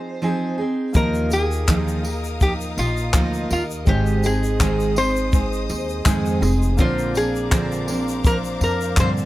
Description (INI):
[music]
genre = acoustic pop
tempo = 82 BPM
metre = 4/4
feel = swing 55% on 16ths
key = unclear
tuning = A4 = 440 Hz
[part]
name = lap resonator guitar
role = melody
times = 0.0-9.1 s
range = F4 to C5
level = -25 LUFS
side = left 1 dB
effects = digital delay
[part]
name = picked steel-string acoustic guitar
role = accompaniment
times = 0.0-9.3 s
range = Ab2 to Bb4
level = -23 LUFS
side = right 2 dB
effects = none
[part]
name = warm grand piano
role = accompaniment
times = 0.9-9.3 s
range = Ab3 to Eb5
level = -34 LUFS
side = left 3 dB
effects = none
[part]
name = compact cocktail drum kit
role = drums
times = 0.9-9.2 s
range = handclaps, kick drum, tambourine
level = -20 LUFS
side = equal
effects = none
[part]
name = egg shaker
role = percussion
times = 0.9-9.3 s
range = none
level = -38 LUFS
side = left 6 dB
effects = none
[part]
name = warm studio string section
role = sustained chords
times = 1.0-9.3 s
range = C5 to Eb6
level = -34 LUFS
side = left 4 dB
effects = none
[part]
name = upright bass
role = bass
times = 1.0-9.3 s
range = F1 to G2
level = -24 LUFS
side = equal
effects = none
[sound]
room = little or no reverb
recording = none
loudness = -18 LUFS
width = side -16 dB against mid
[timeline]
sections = 0.0-9.3 A section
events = none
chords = 0.0 Fm7; 1.0 Ebsus2; 3.9 Ab; 6.8 Bbadd9